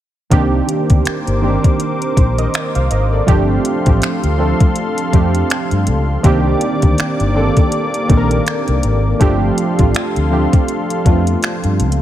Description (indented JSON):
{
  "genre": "contemporary R&B",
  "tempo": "81 BPM",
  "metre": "4/4",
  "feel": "swing 58% on 16ths",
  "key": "C dorian",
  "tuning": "A4 = 439 Hz",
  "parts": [
    { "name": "warm analog keys", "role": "accompaniment", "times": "0.3-12.0 s", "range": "Eb3 to F5", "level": "-17 LUFS", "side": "right 2 dB", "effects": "chorus" },
    { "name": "warm analog pad", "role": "sustained chords", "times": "0.3-12.0 s", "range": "Bb3 to D6", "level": "-23 LUFS", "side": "left 3 dB", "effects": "chorus" },
    { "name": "vintage muted fingered electric bass", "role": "bass", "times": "0.3-12.0 s", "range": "G1 to G2", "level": "-16 LUFS", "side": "equal", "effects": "none" },
    { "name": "smooth R&B drum kit", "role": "drums", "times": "0.3-12.0 s", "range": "finger snaps, hi-hat, kick drum", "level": "-15 LUFS", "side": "equal", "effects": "none" }
  ],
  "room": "little or no reverb",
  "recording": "none",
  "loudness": "-12 LUFS",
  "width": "side -12 dB against mid",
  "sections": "0.3-12.0 A section",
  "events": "none",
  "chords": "0.3 Cm9; 3.3 G9sus4; 6.2 Cm9; 9.2 G9sus4"
}